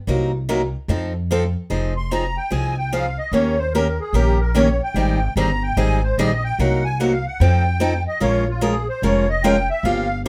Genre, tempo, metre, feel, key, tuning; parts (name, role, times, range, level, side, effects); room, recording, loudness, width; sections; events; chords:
acoustic string swing (jazz manouche); 148 BPM; 4/4; swing 64% on 8ths; F minor; A4 = 442 Hz
picked steel-string acoustic guitar; accompaniment; 0.1-10.3 s; C3 to Bb4; -22 LUFS; equal
upright bass; bass; 0.1-10.3 s; F1 to F2; -23 LUFS; equal
musette accordion; second line; 2.0-10.2 s; F4 to C6; -26 LUFS; equal
moderate studio reverb, RT60 0.6 s; -20 LUFS; mono
0.0-1.7 A section; 1.7-10.3 B section
accordion solo 1.7-10.3
0.1 Cm7b5; 0.9 F7; 1.7 Fm7; 3.3 Eb7; 5.0 Abmaj7; 6.6 Cm7b5; 7.4 F7; 8.2 Bbm7